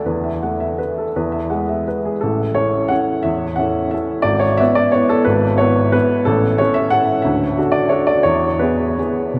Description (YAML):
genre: classical, piano waltz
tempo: 163-190 BPM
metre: 3/4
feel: rubato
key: A major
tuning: A4 = 439 Hz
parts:
  - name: clear baby grand piano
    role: solo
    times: 0.0-9.4 s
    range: G#1 to F#5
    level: -17 LUFS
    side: equal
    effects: none
room: wet cathedral reverb, RT60 6.5 s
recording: in a vast, echoing space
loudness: -17 LUFS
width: mono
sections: 0.0-2.2 A section; 2.2-9.4 B section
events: none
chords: 0.1 Esus4; 1.1 E; 2.2 A; 4.3 E/G#; 6.3 A; 7.2 D; 8.3 E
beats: | 0.06 0.42 0.78 | 1.14 1.49 1.86 | 2.21 2.56 2.91 | 3.25 3.58 3.92 | 4.26 4.59 4.94 | 5.27 5.60 5.94 | 6.27 6.59 6.93 | 7.25 7.58 7.92 | 8.27 8.62 8.98 | 9.33